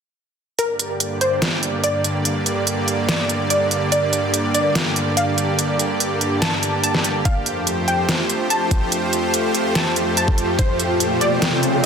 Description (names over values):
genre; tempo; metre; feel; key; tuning
heavy wobble dubstep; 144 BPM; 4/4; half-time; G minor; A4 = 442 Hz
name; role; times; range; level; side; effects
wide unison pluck; melody; 0.6-11.9 s; Bb4 to A5; -24 LUFS; equal; tape echo
supersaw pad; sustained chords; 0.6-11.9 s; F2 to D5; -21 LUFS; right 1 dB; sidechain pumping
dubstep drum kit; drums; 0.6-11.9 s; hi-hat, snare drum; -21 LUFS; right 1 dB; studio reverb
ethereal airy pad; texture; 1.8-11.9 s; D4 to A5; -27 LUFS; equal; ensemble chorus, built-in reverb, sidechain pumping
electronic kick drum; drums; 7.3-10.7 s; none; -19 LUFS; equal; overdrive, studio reverb
riser; sound effects; 10.8-11.9 s; none; -22 LUFS; left 1 dB; none
room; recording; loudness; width
moderate plate reverb, RT60 2.0 s, digital ambience; dense, heavily limited modern master; -17 LUFS; side -6 dB against mid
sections
0.6-11.9 A section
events
fade-in on ambient pad 0.6-11.9; riser 10.8-11.9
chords
0.6 Gm; 7.3 Fadd9